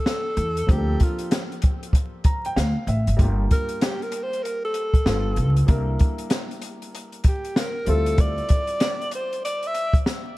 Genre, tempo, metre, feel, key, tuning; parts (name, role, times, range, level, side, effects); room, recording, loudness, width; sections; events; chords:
hip hop, jazz-hop; 96 BPM; 4/4; swing 64% on 16ths; G dorian; A4 = 440 Hz
breathy alto saxophone; melody; 0.0-10.0 s; F4 to E5; -28 LUFS; equal; tape echo
dark upright piano; accompaniment; 0.0-10.3 s; F3 to Bb5; -32 LUFS; left 1 dB
open jazz drum kit; drums; 0.1-10.3 s; hi-hat, kick drum, snare drum; -21 LUFS; equal
upright bass; bass; 0.4-8.4 s; G1 to E2; -22 LUFS; equal
studio ambience; dark, warm production, vinyl crackle; -20 LUFS; side -18 dB against mid
0.0-10.4 A section
alto saxophone solo 0.0-10.4; upright piano fill 1.9-3.2
0.0 Dm11 (rootless); 0.7 Bbmaj9/D; 3.2 Gm7; 5.1 G7; 5.7 C9 (rootless); 7.9 Dm11